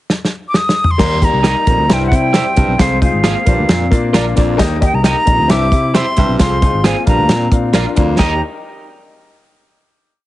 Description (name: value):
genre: uptempo 1960s-style soul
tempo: 133 BPM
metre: 4/4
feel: straight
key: Eb major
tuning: A4 = 440 Hz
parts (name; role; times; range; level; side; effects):
- warm soul drum kit; drums; 0.1-8.3 s; crash cymbal, hi-hat, kick drum, snare drum, toms; -14 LUFS; equal; none
- breathy silver concert flute; melody; 0.5-8.4 s; F5 to Eb6; -17 LUFS; equal; none
- warm baby grand piano; accompaniment; 1.0-8.4 s; G3 to G5; -20 LUFS; left 5 dB; none
- breathy baritone saxophone; riff; 1.0-8.4 s; Eb2 to Bb2; -24 LUFS; right 5 dB; none
- fingered electric bass; bass; 1.0-8.4 s; Ab1 to C3; -18 LUFS; equal; none
- electric guitar through a small old amp; riff; 1.2-8.4 s; Bb3 to G4; -24 LUFS; left 6 dB; none
- electric guitar at the edge of break-up; stabs; 1.4-8.3 s; Eb4 to F5; -23 LUFS; right 5 dB; none
room: light reverb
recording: heavily compressed radio sound, multiband compression, nothing above 11.0 kHz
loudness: -11 LUFS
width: side -15 dB against mid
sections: 0.0-1.0 pickup bar; 1.0-8.2 verse; 8.2-10.0 final chord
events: drum fill 0.1-1.0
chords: 0.0 N.C.; 1.0 Eb; 1.9 C; 2.8 Fm/C; 3.5 Bb; 4.6 Eb; 5.5 C; 6.4 Fm/C; 7.1 Bb; 8.2 Eb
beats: 0.10 0.54 | 0.99 1.44 1.89 2.34 | 2.79 3.24 3.69 4.14 | 4.59 5.05 5.50 5.95 | 6.40 6.85 7.30 7.75 | 8.19